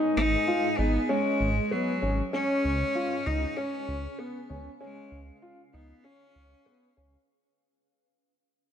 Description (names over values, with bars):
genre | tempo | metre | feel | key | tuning
piano and strings electronica | 97 BPM | 4/4 | straight | unclear | A4 = 442 Hz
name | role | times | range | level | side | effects
granular cloud pad | sustained chords | 0.0-7.3 s | G#3 to G#5 | -37 LUFS | right 1 dB | built-in reverb
dark baby grand piano | riff | 0.0-7.1 s | B3 to E#4 | -30 LUFS | left 1 dB | digital delay
clear cello | melody | 0.2-7.0 s | F#3 to D#4 | -29 LUFS | left 1 dB | digital delay
dark detuned saw bass | bass | 0.2-7.2 s | G#1 to C#2 | -30 LUFS | equal | none
room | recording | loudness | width
light reverb, small room reverb | none | -25 LUFS | side -9 dB against mid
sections
0.0-7.3 A section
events
drop 0.0-7.3; fade-out 0.0-7.3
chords
0.0 G#m; 2.3 C#7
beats
0.47 1.09 1.71 | 2.33 2.95 3.57 4.19 | 4.80 5.42 6.04 6.66